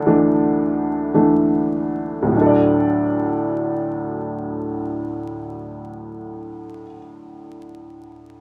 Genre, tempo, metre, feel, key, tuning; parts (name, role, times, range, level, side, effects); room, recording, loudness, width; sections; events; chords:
classical, lyrical solo piano; 51 BPM; 4/4; rubato; D major; A4 = 440 Hz
clear upright piano; solo; 0.0-8.4 s; D2 to D5; -21 LUFS; equal
moderate studio reverb, RT60 0.6 s; vinyl crackle; -19 LUFS; mono
0.0-2.3 A section; 2.3-7.1 B section
slowing down 0.0-2.3
0.0 Dsus2; 2.3 D